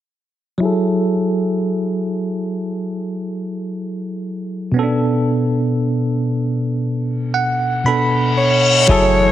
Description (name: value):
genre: contemporary R&B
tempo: 58 BPM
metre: 4/4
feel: swing 58% on 16ths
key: F# minor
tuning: A4 = 440 Hz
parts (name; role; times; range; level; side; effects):
- bell-like tine electric piano; accompaniment; 0.6-9.3 s; B2 to B5; -17 LUFS; equal; medium stereo tremolo, low-pass filter
- reverse cymbal and impact; sound effects; 8.0-9.3 s; none; -20 LUFS; left 4 dB; none
- breathy alto saxophone; melody; 8.4-9.3 s; C#5; -14 LUFS; equal; none
- lush unison pad; sustained chords; 9.1-9.3 s; E3 to F#4; -25 LUFS; left 1 dB; chorus, phaser
- clean 808-style bass; bass; 8.9-9.3 s; F#1; -17 LUFS; equal; none
room: moderate lush hall reverb, RT60 2.2 s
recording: none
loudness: -16 LUFS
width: side -12 dB against mid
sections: 0.6-8.9 A section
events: filter sweep on tine electric piano 0.6-8.9; tine electric piano fill 6.8-8.9; reverse cymbal 8.0-8.9; impact 8.9-9.3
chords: 0.6 F#m9; 4.7 Bm7